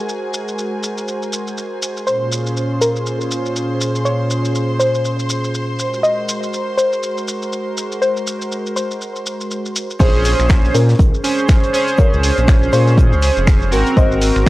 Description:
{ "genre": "deep house", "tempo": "121 BPM", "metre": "4/4", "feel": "swing 58% on 16ths", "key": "Bb minor", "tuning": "A4 = 443 Hz", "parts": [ { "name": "warm analog pad", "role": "sustained chords", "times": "0.0-14.5 s", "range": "Bb2 to C5", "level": "-23 LUFS", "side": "equal", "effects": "chorus, sidechain pumping" }, { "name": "clear studio violin section", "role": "texture", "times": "0.0-10.0 s", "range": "Ab4 to C6", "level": "-28 LUFS", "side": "equal", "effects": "sidechain pumping" }, { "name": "punchy analog drum machine", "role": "drums", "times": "0.1-14.5 s", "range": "crash cymbal, finger snaps, hi-hat, shaker", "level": "-24 LUFS", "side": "equal", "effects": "none" }, { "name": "soft round pluck", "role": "melody", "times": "2.1-14.2 s", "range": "Db4 to Eb5", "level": "-20 LUFS", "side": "left 1 dB", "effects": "chorus, cassette tape, analog delay" }, { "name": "chorused polysynth", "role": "stabs", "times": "10.0-14.5 s", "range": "C4 to C5", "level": "-18 LUFS", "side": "right 1 dB", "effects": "cassette tape, sidechain pumping" }, { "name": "smooth synth bass", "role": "bass", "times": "10.0-14.5 s", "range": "F1 to Bb2", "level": "-16 LUFS", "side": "equal", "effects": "sidechain pumping" }, { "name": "deep reggae drum kit", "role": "drums", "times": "10.0-14.5 s", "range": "hi-hat, shaker, snare drum", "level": "-35 LUFS", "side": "equal", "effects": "none" }, { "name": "electronic kick drum", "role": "drums", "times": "10.0-14.5 s", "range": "none", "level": "-12 LUFS", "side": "equal", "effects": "overdrive" } ], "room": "little or no reverb", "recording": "dry, gritty hardware recording, transformer saturation, cassette tape", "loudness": "-14 LUFS", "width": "side -17 dB against mid", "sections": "0.0-10.0 A section; 10.0-14.5 B section", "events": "drop 10.0-14.5", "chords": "0.0 Ab7; 2.1 Bbm9; 5.8 Ab7; 10.0 Bbm9; 13.7 Ab7" }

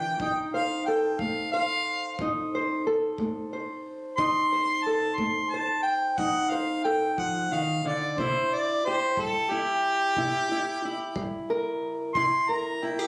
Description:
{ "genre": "acoustic country blues, solo or duo", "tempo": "60 BPM (dotted quarters)", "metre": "12/8", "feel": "straight", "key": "unclear", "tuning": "A4 = 441 Hz", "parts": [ { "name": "mellow harmonica", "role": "melody", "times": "0.0-13.1 s", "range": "G4 to C6", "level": "-28 LUFS", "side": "equal", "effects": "none" }, { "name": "fingerpicked steel-string acoustic guitar", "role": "accompaniment", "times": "0.0-13.1 s", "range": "C3 to C5", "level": "-32 LUFS", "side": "equal", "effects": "none" }, { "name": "kick drum", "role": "drums", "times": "0.2-12.3 s", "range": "none", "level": "-46 LUFS", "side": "equal", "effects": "none" } ], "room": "moderate studio ambience, RT60 0.5 s", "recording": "recorded on a phone in the room, club reverb, compression", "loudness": "-27 LUFS", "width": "mono", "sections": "0.0-13.1 A section", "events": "harmonica solo 0.0-13.1", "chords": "0.2 F7; 8.2 C7" }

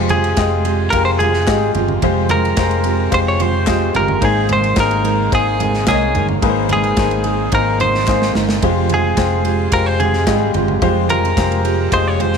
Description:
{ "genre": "piano-driven pop", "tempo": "109 BPM", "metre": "4/4", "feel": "straight", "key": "unclear", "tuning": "A4 = 440 Hz", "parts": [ { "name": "clear baby grand piano", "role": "accompaniment", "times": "0.0-12.4 s", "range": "Ab2 to G5", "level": "-20 LUFS", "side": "left 13 dB", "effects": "none" }, { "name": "fingerpicked steel-string acoustic guitar", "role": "riff", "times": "0.0-12.4 s", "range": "F2 to Bb4", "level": "-21 LUFS", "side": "right 16 dB", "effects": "none" }, { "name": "vintage muted fingered electric bass", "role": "bass", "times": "0.0-12.4 s", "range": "F1 to C2", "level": "-20 LUFS", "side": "right 1 dB", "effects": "none" }, { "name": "direct-recorded clean electric guitar", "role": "melody", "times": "0.1-12.4 s", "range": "Ab4 to Db5", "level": "-19 LUFS", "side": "right 1 dB", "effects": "none" }, { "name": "modern studio drum kit", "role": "drums", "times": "0.1-12.4 s", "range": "kick drum, ride cymbal, snare drum, toms", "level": "-22 LUFS", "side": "right 1 dB", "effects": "none" }, { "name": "group handclap", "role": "percussion", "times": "0.4-11.5 s", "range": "none", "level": "-30 LUFS", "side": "left 12 dB", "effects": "none" } ], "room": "light reverb, small room ambience", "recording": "1960s-style stereo with parts hard left and right", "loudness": "-13 LUFS", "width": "side -6 dB against mid", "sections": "0.0-12.4 A section", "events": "drum fill 8.1-8.6", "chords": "0.0 Fmadd9; 4.2 Abadd9; 8.6 Fmadd9" }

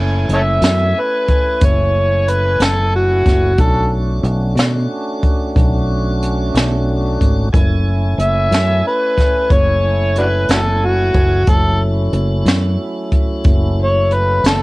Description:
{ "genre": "slow blues", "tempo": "61 BPM (dotted quarters)", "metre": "12/8", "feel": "straight", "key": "F# minor", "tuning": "A4 = 442 Hz", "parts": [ { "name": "tonewheel organ", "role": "sustained chords", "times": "0.0-14.6 s", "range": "F#3 to G#5", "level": "-22 LUFS", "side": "equal", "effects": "overdrive, slow rotary speaker, cassette tape" }, { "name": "fingered electric bass", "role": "bass", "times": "0.0-14.6 s", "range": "F#1 to B2", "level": "-16 LUFS", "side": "equal", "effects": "tube saturation" }, { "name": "overdriven harmonica", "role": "melody", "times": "0.3-14.6 s", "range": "D4 to E5", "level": "-16 LUFS", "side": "equal", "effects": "cassette tape" }, { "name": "jazz brush drum kit", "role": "drums", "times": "0.3-14.6 s", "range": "hi-hat, kick drum, snare drum", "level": "-16 LUFS", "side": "equal", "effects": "cassette tape" } ], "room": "light reverb", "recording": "home recording on cassette", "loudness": "-13 LUFS", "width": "side -21 dB against mid", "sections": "0.0-14.6 A section", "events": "none", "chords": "0.0 F#m7; 3.6 Bm7; 7.5 F#m7" }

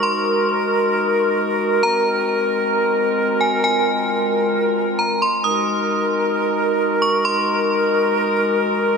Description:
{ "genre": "hip hop", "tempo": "133 BPM", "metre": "4/4", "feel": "half-time", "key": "unclear", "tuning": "A4 = 440 Hz", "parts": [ { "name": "metallic FM bell", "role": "melody", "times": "0.0-7.7 s", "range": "Ab5 to Eb6", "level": "-22 LUFS", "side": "equal", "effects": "chorus, tape echo" }, { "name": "mellow woodwind section", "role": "sustained chords", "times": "0.0-9.0 s", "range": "Ab3 to Bb4", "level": "-18 LUFS", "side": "equal", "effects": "none" } ], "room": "wet huge ambient reverb, RT60 8.2 s", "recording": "dreamy mix soaked in reverb", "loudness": "-16 LUFS", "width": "side -5 dB against mid", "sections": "0.0-5.4 A section; 5.4-9.0 B section", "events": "none", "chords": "0.0 Gb69; 1.8 Ab9; 5.4 Gb69" }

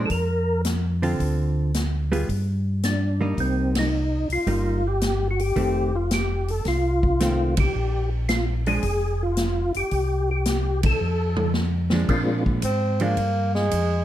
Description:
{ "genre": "soul jazz organ trio", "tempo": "110 BPM", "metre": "4/4", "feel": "swing 69% on 8ths", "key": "Bb mixolydian", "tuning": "A4 = 437 Hz", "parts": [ { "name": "percussive tonewheel organ", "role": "melody", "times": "0.0-12.4 s", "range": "Ab3 to Bb4", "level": "-25 LUFS", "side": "equal", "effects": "slow rotary speaker, chorus vibrato" }, { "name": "hollow-body jazz guitar", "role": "accompaniment", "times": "0.0-13.2 s", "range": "D3 to A4", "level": "-27 LUFS", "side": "right 2 dB", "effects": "none" }, { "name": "mellow tonewheel organ", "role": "bass", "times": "0.0-14.0 s", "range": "F1 to Bb2", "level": "-24 LUFS", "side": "equal", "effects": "slow rotary speaker" }, { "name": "swinging big-band drum kit", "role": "drums", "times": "0.1-13.9 s", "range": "crash cymbal, hi-hat, kick drum, ride cymbal, snare drum, toms", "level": "-28 LUFS", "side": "equal", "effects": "none" }, { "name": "mellow tenor saxophone", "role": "melody", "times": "12.6-14.0 s", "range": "Ab3 to C4", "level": "-24 LUFS", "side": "right 1 dB", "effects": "none" } ], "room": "light reverb", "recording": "none", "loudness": "-21 LUFS", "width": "side -12 dB against mid", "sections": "0.0-12.1 A section; 12.1-14.0 B section", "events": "band accent 3.7, 7.5, 10.7; drum fill 11.0-12.1; tenor saxophone solo 12.1-14.0", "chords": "0.0 Bb; 1.2 Dm7; 2.3 G5; 3.4 Cm7; 5.6 F7; 7.7 Bb7(no3); 9.9 C5; 11.0 F; 12.1 Bb7" }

